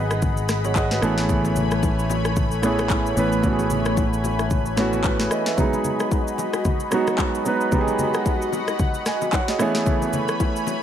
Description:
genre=amapiano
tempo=112 BPM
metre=4/4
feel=swing 58% on 16ths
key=G# phrygian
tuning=A4 = 441 Hz
part: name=warm grand piano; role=accompaniment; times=0.0-10.8 s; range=E3 to A5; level=-23 LUFS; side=right 3 dB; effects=none
part: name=lush unison pad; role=sustained chords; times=0.0-10.8 s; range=A3 to B5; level=-27 LUFS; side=left 2 dB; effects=chorus, sidechain pumping
part: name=fingered electric bass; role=bass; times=0.0-5.3 s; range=G#1 to A1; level=-25 LUFS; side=left 1 dB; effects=none
part: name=afro-pop drum kit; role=drums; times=0.1-10.8 s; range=handclaps, kick drum, rim click, shaker, snare drum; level=-24 LUFS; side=left 1 dB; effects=overdrive
part: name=bongos and congas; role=percussion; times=0.1-10.8 s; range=none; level=-31 LUFS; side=left 4 dB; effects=none
room=light reverb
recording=none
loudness=-19 LUFS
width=side -10 dB against mid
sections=0.0-10.8 A section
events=grand piano fill 0.5-1.3, 8.8-9.9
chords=0.0 G#m7; 1.0 Amaj9; 5.6 G#m7; 9.6 Amaj9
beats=0.22 0.76 | 1.29 1.83 2.36 2.90 | 3.44 3.97 4.51 5.04 | 5.58 6.11 6.65 7.18 | 7.72 8.26 8.79 9.33 | 9.86 10.40

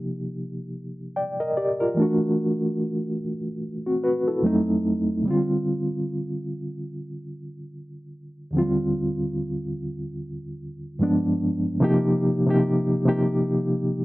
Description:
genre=R&B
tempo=73 BPM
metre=4/4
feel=swing 58% on 16ths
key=C minor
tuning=A4 = 440 Hz
part: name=reed electric piano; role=solo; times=0.0-14.0 s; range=Eb2 to G5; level=-22 LUFS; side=equal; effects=fast tremolo
room=little or no reverb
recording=dry, close 1970s-style studio recording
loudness=-22 LUFS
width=side -18 dB against mid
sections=0.0-11.8 A section; 11.8-14.0 B section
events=none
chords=0.0 Cm7; 2.0 D; 4.4 F7b9; 5.2 G7sus4/D; 8.5 Ebmaj9; 11.0 G7b9; 11.8 Cm7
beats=0.32 1.14 | 1.96 2.78 3.60 4.43 | 5.25 6.07 6.89 7.71 | 8.54 9.36 10.18 11.00 | 11.82 12.65 13.47

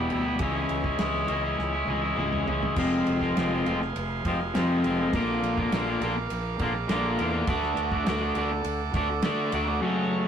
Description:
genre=psychedelic rock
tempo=102 BPM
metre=4/4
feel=straight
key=unclear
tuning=A4 = 438 Hz
part: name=combo organ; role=sustained chords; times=0.0-10.3 s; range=G4 to D6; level=-34 LUFS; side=right 6 dB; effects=none
part: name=electric guitar at the edge of break-up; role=riff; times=0.0-10.3 s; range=E2 to F#4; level=-26 LUFS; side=left 1 dB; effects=none
part: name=fuzz fingered electric bass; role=bass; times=0.0-9.8 s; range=F1 to D3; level=-32 LUFS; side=equal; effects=overdrive
part: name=damped 70s drum kit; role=drums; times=0.1-9.7 s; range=crash cymbal, kick drum, ride cymbal, snare drum, toms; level=-33 LUFS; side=right 1 dB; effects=none
room=moderate small room reverb, RT60 0.5 s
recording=rough rehearsal-room recording, warm saturation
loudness=-24 LUFS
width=side -8 dB against mid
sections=0.0-2.8 A section; 2.8-10.3 B section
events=drum fill 1.6-2.8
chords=0.4 C#m; 2.8 Fm; 5.1 Bb; 7.5 D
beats=| 0.41 1.00 1.59 2.19 | 2.78 3.37 3.96 4.55 | 5.13 5.72 6.31 6.90 | 7.49 8.07 8.66 9.24 | 9.83

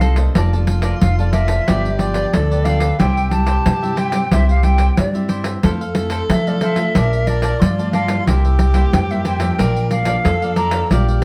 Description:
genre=samba and choro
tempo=91 BPM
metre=4/4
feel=straight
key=unclear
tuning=A4 = 440 Hz
part: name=hollow concert flute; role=melody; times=0.0-10.9 s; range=D5 to Bb5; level=-24 LUFS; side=equal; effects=none
part: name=breathy tenor saxophone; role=second line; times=0.0-11.2 s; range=F4 to Bb4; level=-28 LUFS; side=equal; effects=none
part: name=cavaquinho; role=accompaniment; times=0.0-11.2 s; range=D4 to A5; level=-31 LUFS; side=equal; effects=none
part: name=nylon-string guitar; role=accompaniment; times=0.0-11.2 s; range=G2 to A4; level=-27 LUFS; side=equal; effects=none
part: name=upright bass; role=bass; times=0.0-11.2 s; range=F1 to F3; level=-20 LUFS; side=equal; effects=none
part: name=pandeiro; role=percussion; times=0.0-11.2 s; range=none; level=-23 LUFS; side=equal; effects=none
room=moderate studio reverb, RT60 0.6 s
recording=heard from further back in the room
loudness=-17 LUFS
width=mono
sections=0.0-11.2 A section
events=none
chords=0.4 Bbmaj7/F; 1.7 G7; 3.0 C; 5.6 Fmaj7; 7.0 Bbmaj7; 8.3 C7; 9.6 Bb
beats=| 0.36 1.02 1.68 2.34 | 3.00 3.66 4.32 4.98 | 5.63 6.29 6.95 7.61 | 8.27 8.93 9.59 10.24 | 10.90

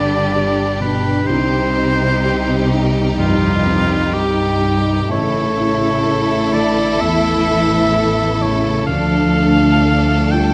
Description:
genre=cinematic, emotional film score for orchestra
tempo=63 BPM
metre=4/4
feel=rubato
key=unclear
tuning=A4 = 440 Hz
part: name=rich studio violin section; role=melody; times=0.0-10.5 s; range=G4 to A4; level=-28 LUFS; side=equal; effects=none
part: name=clear oboe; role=second line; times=0.0-10.5 s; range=F4 to G5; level=-22 LUFS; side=equal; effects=none
part: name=warm studio violin section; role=second line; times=0.0-10.5 s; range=D4 to E4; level=-25 LUFS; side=equal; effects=none
part: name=felt-muted upright piano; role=accompaniment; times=0.0-10.5 s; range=A1 to A4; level=-24 LUFS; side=equal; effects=none
part: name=rich studio viola section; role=accompaniment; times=0.0-10.5 s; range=G3 to A3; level=-26 LUFS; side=equal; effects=none
part: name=concert harp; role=arpeggios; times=0.0-10.5 s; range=G2 to A4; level=-28 LUFS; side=equal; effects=none
part: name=warm studio cello section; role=bass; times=0.0-10.5 s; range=F2 to G3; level=-24 LUFS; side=equal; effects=none
part: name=warm studio double bass section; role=bass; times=0.0-10.5 s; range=G1 to D2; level=-25 LUFS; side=equal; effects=none
room=moderate recital hall reverb, RT60 1.4 s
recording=none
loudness=-16 LUFS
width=mono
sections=0.0-10.5 A section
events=none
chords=0.0 G; 1.3 Cm; 5.1 A; 8.9 Dm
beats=0.35 | 1.29 2.24 3.18 4.13 | 5.10 6.05 7.00 7.94 | 8.89 9.84

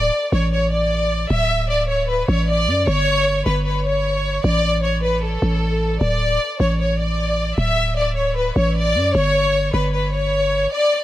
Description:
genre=hip hop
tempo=153 BPM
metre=4/4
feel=half-time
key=unclear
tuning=A4 = 442 Hz
part: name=warm studio violin section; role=melody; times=0.0-11.0 s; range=A4 to E5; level=-19 LUFS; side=left 1 dB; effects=tape echo
part: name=growling 808-style bass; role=bass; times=0.0-10.7 s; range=D1 to F#2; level=-20 LUFS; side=equal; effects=none
room=small room ambience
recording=none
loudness=-17 LUFS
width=side -14 dB against mid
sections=0.0-11.0 A section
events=none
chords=0.0 D5; 2.9 G; 4.4 Asus4; 6.0 D5; 9.1 G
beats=0.13 0.52 0.91 | 1.30 1.70 2.09 2.48 | 2.87 3.27 3.66 4.05 | 4.44 4.83 5.23 5.62 | 6.01 6.40 6.79 7.19 | 7.58 7.97 8.36 8.76 | 9.15 9.54 9.93 10.32 | 10.72

